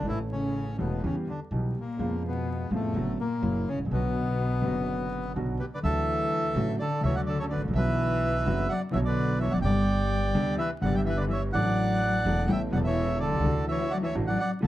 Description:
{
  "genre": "tango",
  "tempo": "126 BPM",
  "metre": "4/4",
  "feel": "rubato",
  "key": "B minor, D major from 5.8 s",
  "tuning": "A4 = 441 Hz",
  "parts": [
    { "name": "bandoneon", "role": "melody", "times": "0.0-14.7 s", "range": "A3 to G5", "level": "-30 LUFS", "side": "right 1 dB", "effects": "none" },
    { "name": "dark cello", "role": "second line", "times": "0.0-14.7 s", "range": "A2 to A3", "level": "-32 LUFS", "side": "left 4 dB", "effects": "none" },
    { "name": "warm concert grand piano", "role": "accompaniment", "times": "0.0-14.7 s", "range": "E1 to A4", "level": "-30 LUFS", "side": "right 1 dB", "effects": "none" },
    { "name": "upright bass", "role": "bass", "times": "0.0-14.7 s", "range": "E1 to E#2", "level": "-31 LUFS", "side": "equal", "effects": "none" }
  ],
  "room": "moderate studio reverb, RT60 0.8 s",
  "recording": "dark, warm production, vinyl crackle",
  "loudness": "-25 LUFS",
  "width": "side -14 dB against mid",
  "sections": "0.0-5.8 A section; 5.8-14.7 B section",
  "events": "none",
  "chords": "0.1 A; 1.0 Em; 2.0 C#7/E#; 3.0 Bm/F#; 3.4 F#7; 3.9 Bm; 5.8 D; 7.8 Bm; 9.7 G; 11.5 Asus4; 12.5 Aadd9; 13.4 Dadd9"
}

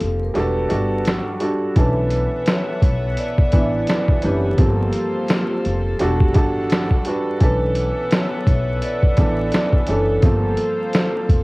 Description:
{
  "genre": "lo-fi hip hop",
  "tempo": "85 BPM",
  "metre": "4/4",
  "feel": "swing 58% on 16ths",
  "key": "B minor",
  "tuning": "A4 = 441 Hz",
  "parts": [
    { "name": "vibraphone with soft mallets", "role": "melody", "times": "0.0-11.4 s", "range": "G4 to D5", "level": "-24 LUFS", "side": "equal", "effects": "none" },
    { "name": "warm upright piano", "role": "accompaniment", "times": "0.0-11.4 s", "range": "E3 to B4", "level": "-23 LUFS", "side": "right 1 dB", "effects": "cassette tape" },
    { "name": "upright bass", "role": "bass", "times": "0.0-11.4 s", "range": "E1 to B1", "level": "-23 LUFS", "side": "equal", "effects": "transformer saturation" },
    { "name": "boom bap sampler-style drum kit", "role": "drums", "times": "0.0-11.4 s", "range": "hi-hat, kick drum, snare drum", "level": "-18 LUFS", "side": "equal", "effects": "cassette tape" },
    { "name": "clear studio string section", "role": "sustained chords", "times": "1.8-11.4 s", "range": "E3 to F#5", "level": "-29 LUFS", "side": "equal", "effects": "cassette tape" }
  ],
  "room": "light reverb",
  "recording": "home recording on cassette, vinyl crackle",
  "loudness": "-16 LUFS",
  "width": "side -24 dB against mid",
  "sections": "0.0-1.8 A section; 1.8-11.4 A section",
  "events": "break 0.0-1.8",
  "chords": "0.3 Em11; 1.8 Bm11; 4.6 Gm11; 6.0 Em11; 7.4 Bm11; 10.2 Gm11"
}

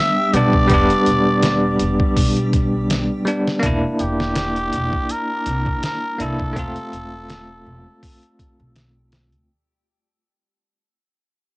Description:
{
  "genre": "trip hop",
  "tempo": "82 BPM",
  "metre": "4/4",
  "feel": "swing 55% on 16ths",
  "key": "unclear",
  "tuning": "A4 = 440 Hz",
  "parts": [
    { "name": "trumpet with cup mute", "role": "melody", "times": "0.0-8.8 s", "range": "G4 to E5", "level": "-22 LUFS", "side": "equal", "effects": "vintage 12-bit sampler grit, cassette tape, tape echo" },
    { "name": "bell-like tine electric piano", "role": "accompaniment", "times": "0.0-9.5 s", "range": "G3 to F4", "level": "-20 LUFS", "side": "equal", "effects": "tremolo, cassette tape" },
    { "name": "backwards swelling texture", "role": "texture", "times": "0.1-9.5 s", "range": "G3 to G4", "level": "-35 LUFS", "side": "left 1 dB", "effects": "none" },
    { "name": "upright bass", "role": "bass", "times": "0.3-9.5 s", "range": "E1 to D2", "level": "-23 LUFS", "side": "equal", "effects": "tube saturation" },
    { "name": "trip hop sampler-style drum kit", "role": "drums", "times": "0.3-9.5 s", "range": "hi-hat, kick drum, snare drum", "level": "-22 LUFS", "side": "equal", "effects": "cassette tape" }
  ],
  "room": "little or no reverb",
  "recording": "home recording on cassette, nothing above 10.7 kHz",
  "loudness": "-16 LUFS",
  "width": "side -24 dB against mid",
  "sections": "0.0-9.5 A section",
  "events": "fade-out 1.7-9.5",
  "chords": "0.0 Em7; 3.6 C7/E; 6.6 F/E"
}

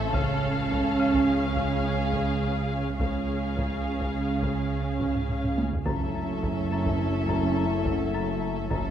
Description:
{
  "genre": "cinematic, suspense film score",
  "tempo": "105 BPM",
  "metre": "5/4",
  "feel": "straight",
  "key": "unclear",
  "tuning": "A4 = 439 Hz",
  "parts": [
    { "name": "muted symphonic violin section", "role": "melody", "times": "0.0-8.9 s", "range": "E5 to E#5", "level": "-34 LUFS", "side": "left 3 dB", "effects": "none" },
    { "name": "muted symphonic violin section", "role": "second line", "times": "0.0-8.9 s", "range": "G#4 to A4", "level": "-36 LUFS", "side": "left 3 dB", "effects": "none" },
    { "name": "muted symphonic viola section", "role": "accompaniment", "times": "0.0-8.9 s", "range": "C4 to C#4", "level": "-31 LUFS", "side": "right 4 dB", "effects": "none" },
    { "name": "marimba with hard mallets", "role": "riff", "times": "0.0-8.9 s", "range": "F#2 to C#4", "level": "-36 LUFS", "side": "left 4 dB", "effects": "none" },
    { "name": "muted symphonic cello section", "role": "bass", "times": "0.0-8.9 s", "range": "F#2 to C#3", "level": "-32 LUFS", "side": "right 4 dB", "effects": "none" },
    { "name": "muted symphonic double bass section", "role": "bass", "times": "0.0-8.9 s", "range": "F#1 to C#2", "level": "-34 LUFS", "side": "right 3 dB", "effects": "none" },
    { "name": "analog drone", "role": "drone", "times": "0.0-8.9 s", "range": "F#1 to C#2", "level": "-33 LUFS", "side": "right 1 dB", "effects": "chorus" },
    { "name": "taiko ensemble", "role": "drums", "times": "0.1-8.9 s", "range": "none", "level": "-33 LUFS", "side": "right 1 dB", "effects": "none" },
    { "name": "mellow French horn section", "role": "sustained chords", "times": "5.9-8.9 s", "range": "A3 to E4", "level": "-31 LUFS", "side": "left 6 dB", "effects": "none" }
  ],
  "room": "wet scoring stage reverb, RT60 2.0 s",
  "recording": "none",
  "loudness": "-24 LUFS",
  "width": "side -10 dB against mid",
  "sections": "0.0-5.9 A section; 5.9-8.9 A section",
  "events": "drum fill 5.1-5.9",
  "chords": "0.1 C#; 5.9 F#m7"
}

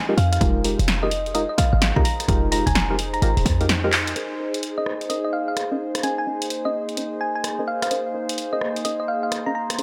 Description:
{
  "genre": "UK garage, two-step garage",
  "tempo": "128 BPM",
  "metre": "4/4",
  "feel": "swing 64% on 16ths",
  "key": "Bb dorian",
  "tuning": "A4 = 439 Hz",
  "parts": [
    { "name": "warbly tape-like pad", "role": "texture", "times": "0.0-9.8 s", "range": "Bb3 to C5", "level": "-32 LUFS", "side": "equal", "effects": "chorus, built-in reverb, phaser, sidechain pumping" },
    { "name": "deep mellow chord stab", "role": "stabs", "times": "0.1-9.8 s", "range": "Ab3 to Eb5", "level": "-30 LUFS", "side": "equal", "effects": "chorus, delay" },
    { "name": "thumb-piano-like synth pluck", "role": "melody", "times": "0.2-9.6 s", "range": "Eb5 to Bb5", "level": "-29 LUFS", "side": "equal", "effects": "chorus, delay" },
    { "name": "short 808-style bass", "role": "bass", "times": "0.2-4.1 s", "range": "Eb1 to F2", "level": "-24 LUFS", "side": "equal", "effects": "none" },
    { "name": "punchy analog drum machine", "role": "drums", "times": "0.2-9.8 s", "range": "handclaps, hi-hat, rim click, snare drum", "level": "-28 LUFS", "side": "equal", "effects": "none" },
    { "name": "electronic kick drum", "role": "drums", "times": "0.4-3.6 s", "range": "none", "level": "-24 LUFS", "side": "equal", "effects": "none" }
  ],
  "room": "light reverb",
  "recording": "none",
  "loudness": "-22 LUFS",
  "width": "mono",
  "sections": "0.0-4.2 A section; 4.2-9.8 B section",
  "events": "drum fill 3.9; band accent 3.9",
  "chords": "0.0 Fm11; 4.2 Bbm11"
}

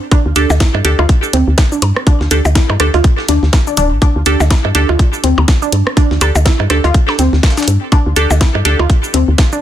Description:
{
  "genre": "minimal techno",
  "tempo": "123 BPM",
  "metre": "4/4",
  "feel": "swing 58% on 16ths",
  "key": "D minor",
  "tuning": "A4 = 440 Hz",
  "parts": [
    { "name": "resonant blip pluck", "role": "riff", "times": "0.1-9.5 s", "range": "C4 to F4", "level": "-18 LUFS", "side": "left 1 dB", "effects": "chorus, sidechain pumping, dub echo" },
    { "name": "breakbeat sampler-style drum kit", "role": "drums", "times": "0.1-9.5 s", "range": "hi-hat, snare drum", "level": "-27 LUFS", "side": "left 1 dB", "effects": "none" },
    { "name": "electronic kick drum", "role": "drums", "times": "0.1-9.5 s", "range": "none", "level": "-11 LUFS", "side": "equal", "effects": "studio reverb" },
    { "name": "electronic percussion blips and rim click", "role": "percussion", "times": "0.1-8.9 s", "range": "none", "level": "-20 LUFS", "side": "right 1 dB", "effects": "studio reverb, soft clipping on snare, digital delay" },
    { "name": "woody FM bass", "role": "bass", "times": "0.3-9.4 s", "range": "D1 to G2", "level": "-13 LUFS", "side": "equal", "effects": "sidechain pumping" },
    { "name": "wavetable chord stab", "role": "stabs", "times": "0.4-8.8 s", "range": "D4 to A4", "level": "-18 LUFS", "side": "right 3 dB", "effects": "digital delay" },
    { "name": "garage drum kit", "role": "drums", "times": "0.4-9.6 s", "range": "cabasa, hi-hat, snare drum", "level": "-18 LUFS", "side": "equal", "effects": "studio reverb, soft clipping on snare" }
  ],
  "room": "little or no reverb",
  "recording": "dense, heavily limited modern master",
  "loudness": "-10 LUFS",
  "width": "side -11 dB against mid",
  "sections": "0.0-9.6 A section",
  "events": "none",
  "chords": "0.0 Dsus4"
}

